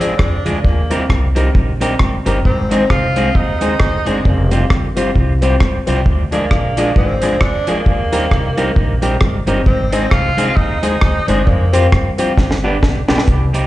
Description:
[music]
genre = ska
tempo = 133 BPM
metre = 4/4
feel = swing 58% on 8ths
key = unclear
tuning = A4 = 440 Hz
[part]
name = clear tenor saxophone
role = melody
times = 0.0-11.9 s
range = Bb3 to F4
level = -21 LUFS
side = equal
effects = tape echo, slapback echo
[part]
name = electric guitar at the edge of break-up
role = accompaniment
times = 0.0-13.7 s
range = F3 to Ab4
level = -20 LUFS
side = right 2 dB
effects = tape echo
[part]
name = warm upright piano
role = stabs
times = 0.0-13.2 s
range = B3 to D5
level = -22 LUFS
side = left 4 dB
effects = tape echo
[part]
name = upright bass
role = bass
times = 0.0-13.7 s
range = F1 to G2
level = -18 LUFS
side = equal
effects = none
[part]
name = deep reggae drum kit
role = drums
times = 0.0-13.6 s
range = hi-hat, kick drum, rim click, snare drum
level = -15 LUFS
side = equal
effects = none
[sound]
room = light reverb, small room ambience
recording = live gig heard through the venue's PA, club reverb, nothing above 10.6 kHz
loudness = -12 LUFS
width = side -16 dB against mid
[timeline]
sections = 0.0-13.3 A section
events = drum fill 12.4-13.3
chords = 0.0 Ddim; 0.6 Eb6; 2.5 Ab; 4.3 Fsus2; 6.1 Ddim; 7.9 Eb6; 9.7 Ab; 11.5 Fsus2; 12.4 G

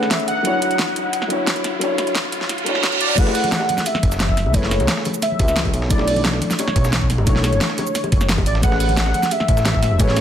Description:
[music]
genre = liquid drum and bass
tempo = 176 BPM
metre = 4/4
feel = straight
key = F# minor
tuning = A4 = 439 Hz
[part]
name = warm velvety synth lead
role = melody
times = 0.0-10.2 s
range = C#5 to F#5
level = -23 LUFS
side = equal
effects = chorus, ping-pong delay
[part]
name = felt-muted upright piano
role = accompaniment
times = 0.0-10.2 s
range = F#3 to D5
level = -24 LUFS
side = left 2 dB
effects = ping-pong delay
[part]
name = pop drum kit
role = drums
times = 0.0-10.2 s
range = crash cymbal, hi-hat, shaker, snare drum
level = -23 LUFS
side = equal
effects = small room reverb
[part]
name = riser and reverse cymbal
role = sound effects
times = 0.0-3.2 s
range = none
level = -24 LUFS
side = right 4 dB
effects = none
[part]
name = dusty soul sampler-style drum kit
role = drums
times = 3.2-10.2 s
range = hi-hat, snare drum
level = -29 LUFS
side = right 2 dB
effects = high-pass filter on hats, small room reverb, high-pass filter on snare
[part]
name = electronic kick drum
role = drums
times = 3.2-10.1 s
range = none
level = -19 LUFS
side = equal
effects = small room reverb
[part]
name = congas and bongos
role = percussion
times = 3.2-10.1 s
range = none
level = -28 LUFS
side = left 2 dB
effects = none
[part]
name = smooth synth bass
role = bass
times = 4.0-10.2 s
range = E1 to C#2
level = -20 LUFS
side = equal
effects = tube saturation
[sound]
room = light reverb, digital ambience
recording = dense, heavily limited modern master, high-pass filter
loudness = -16 LUFS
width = side -9 dB against mid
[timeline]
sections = 0.0-3.2 A section; 3.2-10.2 B section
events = build-up 0.0-3.2; riser 0.0-3.2; filter sweep 0.0-3.2; reverse cymbal 2.5-3.2; drop 3.2-10.2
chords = 0.3 Dmaj9; 3.2 F#m11; 5.9 Bm11; 8.6 Amaj9

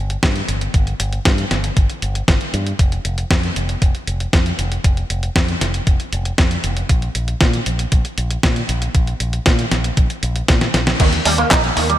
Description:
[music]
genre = italo disco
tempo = 117 BPM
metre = 4/4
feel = straight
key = unclear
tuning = A4 = 441 Hz
[part]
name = fingered electric bass with an envelope filter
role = bass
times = 0.0-11.9 s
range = F1 to Bb2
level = -21 LUFS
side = equal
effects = none
[part]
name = clean 12-bit digital drum machine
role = drums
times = 0.1-12.0 s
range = crash cymbal, handclaps, hi-hat, snare drum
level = -19 LUFS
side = equal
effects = none
[part]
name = electronic kick drum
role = drums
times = 0.2-11.6 s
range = none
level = -16 LUFS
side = equal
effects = none
[part]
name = electric guitar with an envelope filter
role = arpeggios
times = 11.0-11.9 s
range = Eb3 to Eb4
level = -17 LUFS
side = right 4 dB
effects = ensemble chorus, digital delay
[sound]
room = light reverb, digital ambience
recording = bright 1980s-style digital production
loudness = -15 LUFS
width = side -13 dB against mid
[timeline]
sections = 0.0-11.0 A section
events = drum fill 10.6-11.0; band accent 10.9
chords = 0.0 N.C.; 11.0 Eb5

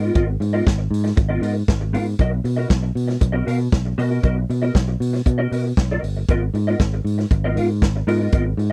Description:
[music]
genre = disco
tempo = 118 BPM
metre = 4/4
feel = straight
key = G# dorian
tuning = A4 = 440 Hz
[part]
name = mellow electric guitar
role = accompaniment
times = 0.0-8.7 s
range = B3 to E#5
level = -27 LUFS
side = equal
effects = ensemble chorus
[part]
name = fingered electric bass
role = bass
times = 0.0-8.7 s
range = G1 to B2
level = -23 LUFS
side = equal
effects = none
[part]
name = vintage drum kit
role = drums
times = 0.2-8.7 s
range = hi-hat, kick drum, snare drum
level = -20 LUFS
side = equal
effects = none
[sound]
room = little or no reverb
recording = dry, close 1970s-style studio recording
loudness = -20 LUFS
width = mono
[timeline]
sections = 0.0-8.7 A section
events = none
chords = 0.0 G#m69; 2.2 Bmaj7; 6.3 G#m69

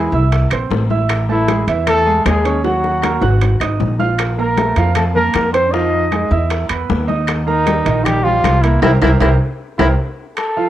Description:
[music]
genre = Afro-Cuban jazz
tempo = 155 BPM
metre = 4/4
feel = straight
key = unclear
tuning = A4 = 440 Hz
[part]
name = breathy trumpet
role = melody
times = 0.0-10.7 s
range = Eb4 to Eb5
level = -18 LUFS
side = equal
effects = cassette tape, plate reverb
[part]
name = mellow trombone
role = second line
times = 0.0-9.9 s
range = Eb3 to Eb4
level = -24 LUFS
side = left 7 dB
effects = cassette tape, plate reverb
[part]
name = warm grand piano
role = accompaniment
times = 0.0-10.7 s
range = Eb3 to Gb6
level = -20 LUFS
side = right 6 dB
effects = cassette tape, plate reverb
[part]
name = upright bass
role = bass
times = 0.0-9.9 s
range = Ab1 to F2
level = -17 LUFS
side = equal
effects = none
[part]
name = bongos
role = percussion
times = 0.1-10.6 s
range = none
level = -26 LUFS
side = left 9 dB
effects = none
[part]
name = congas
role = percussion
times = 0.1-10.7 s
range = none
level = -25 LUFS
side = left 8 dB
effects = none
[part]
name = timbales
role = percussion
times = 0.3-10.6 s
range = none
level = -24 LUFS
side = right 7 dB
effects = none
[part]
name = claves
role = percussion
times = 0.5-10.6 s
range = none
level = -27 LUFS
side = left 9 dB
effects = none
[sound]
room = moderate small room reverb, RT60 0.5 s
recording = home recording on cassette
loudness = -13 LUFS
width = side -12 dB against mid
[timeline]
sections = 0.0-10.4 A section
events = drum fill 2.6-4.2, 9.6-10.4; band accent 8.8-10.4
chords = 0.0 Eaug; 1.1 Amaj7; 2.6 Ebm; 3.4 Absus2; 4.2 Bbsus2; 5.7 Fm7; 6.5 E5; 7.3 Eb; 8.8 C7

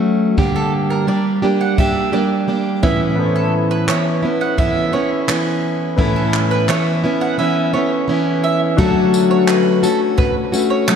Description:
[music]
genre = acoustic pop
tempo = 86 BPM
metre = 4/4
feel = straight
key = D major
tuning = A4 = 439 Hz
[part]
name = picked plugged-in steel-string acoustic guitar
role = accompaniment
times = 0.0-11.0 s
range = G2 to G4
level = -16 LUFS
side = equal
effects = none
[part]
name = jazz brush drum kit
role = drums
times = 0.4-11.0 s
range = handclaps, kick drum, tambourine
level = -21 LUFS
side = equal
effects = none
[part]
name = bowl-back mandolin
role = arpeggios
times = 0.6-10.9 s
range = A4 to F#5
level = -23 LUFS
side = right 5 dB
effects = analog delay
[part]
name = warm concert grand piano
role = accompaniment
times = 3.2-11.0 s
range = B3 to F#5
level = -25 LUFS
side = left 4 dB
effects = analog chorus
[sound]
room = moderate plate reverb, RT60 2.7 s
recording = dreamy mix soaked in reverb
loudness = -14 LUFS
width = side -7 dB against mid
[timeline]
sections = 0.0-8.8 A section; 8.8-11.0 B section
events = none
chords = 0.4 Gm; 2.8 Aadd9; 8.8 Dmaj7

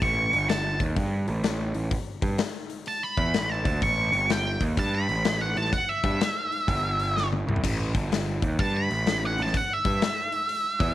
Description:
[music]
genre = blues rock power trio and southern rock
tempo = 126 BPM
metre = 4/4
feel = swing 65% on 8ths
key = A mixolydian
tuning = A4 = 441 Hz
[part]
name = octave-fuzz lead guitar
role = melody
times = 0.0-10.9 s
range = E5 to C#6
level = -26 LUFS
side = right 1 dB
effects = distortion, slapback echo
[part]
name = fuzz picked electric bass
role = bass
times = 0.0-10.9 s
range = G1 to G2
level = -27 LUFS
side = right 1 dB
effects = overdrive
[part]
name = big rock drum kit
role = drums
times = 0.0-10.9 s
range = crash cymbal, hi-hat, kick drum, snare drum, toms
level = -29 LUFS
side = left 2 dB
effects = none
[sound]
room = small room reverb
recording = 1960s-style stereo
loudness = -23 LUFS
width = side -14 dB against mid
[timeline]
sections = 0.0-10.9 A section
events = lead electric guitar solo 0.0-10.9; drum fill 7.2-7.6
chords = 0.3 A7/G; 0.7 A5; 4.1 N.C.; 4.5 A5; 6.7 Em/G; 7.4 Am; 7.9 N.C.; 8.3 A5

